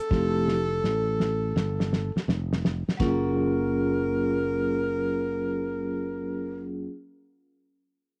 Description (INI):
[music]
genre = hip hop, jazz-hop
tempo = 83 BPM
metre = 4/4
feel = swing 65% on 16ths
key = unclear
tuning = A4 = 441 Hz
[part]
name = breathy tenor saxophone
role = melody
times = 0.0-6.7 s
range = A4 to Bb4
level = -32 LUFS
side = equal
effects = cassette tape, plate reverb
[part]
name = vibraphone with soft mallets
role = accompaniment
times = 0.1-6.9 s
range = F3 to Ab4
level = -30 LUFS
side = equal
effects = plate reverb
[part]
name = sustaining fretless electric bass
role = bass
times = 0.1-6.9 s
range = F1 to A1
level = -34 LUFS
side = equal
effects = none
[part]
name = cloth-damped thuddy drum kit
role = drums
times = 0.1-3.2 s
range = kick drum, ride cymbal, snare drum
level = -29 LUFS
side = equal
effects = none
[sound]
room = moderate small room reverb, RT60 0.6 s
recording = home recording on cassette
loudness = -27 LUFS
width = mono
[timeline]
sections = 0.0-3.0 A section; 3.0-5.9 B section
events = drum fill 0.1-3.0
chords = 0.1 Fmaj9; 3.0 Gbmaj9